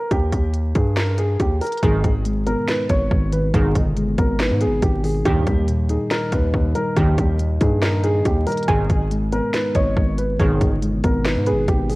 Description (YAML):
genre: hip hop, trap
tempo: 140 BPM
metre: 4/4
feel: half-time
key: G# harmonic minor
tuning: A4 = 440 Hz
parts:
  - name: dark concert grand piano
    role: melody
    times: 0.0-12.0 s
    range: G4 to C#5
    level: -24 LUFS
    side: right 1 dB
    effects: low-pass filter
  - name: distorted 808-style bass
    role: bass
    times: 0.1-12.0 s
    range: G1 to G#2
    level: -21 LUFS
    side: equal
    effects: distortion
  - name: trap drum kit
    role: drums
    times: 0.1-12.0 s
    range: finger snaps, hi-hat, kick drum, snare drum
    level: -22 LUFS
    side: equal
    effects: none
  - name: muted felt-like synth keys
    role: accompaniment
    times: 1.8-12.0 s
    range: G#2 to D#5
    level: -24 LUFS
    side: left 1 dB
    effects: chorus, low-pass filter
  - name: resonant sweep polysynth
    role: stabs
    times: 1.8-10.6 s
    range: A#1 to D#3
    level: -25 LUFS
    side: equal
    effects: chorus
  - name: soft round pluck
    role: second line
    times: 8.7-11.7 s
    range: B4 to G#5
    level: -29 LUFS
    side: right 2 dB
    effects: chorus, tape echo
room: light reverb, digital ambience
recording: worn, warbling old tape, cassette tape, vinyl crackle, warbly pitch drift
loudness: -17 LUFS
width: side -21 dB against mid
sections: 0.0-1.8 A section; 1.8-12.0 B section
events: break 0.0-1.8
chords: 0.0 D#; 1.8 G#m; 5.3 D#; 8.7 G#m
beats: | 0.11 0.54 0.97 1.40 | 1.82 2.25 2.68 3.11 | 3.54 3.97 4.40 4.82 | 5.25 5.68 6.11 6.54 | 6.97 7.40 7.82 8.25 | 8.68 9.11 9.54 9.97 | 10.40 10.82 11.25 11.68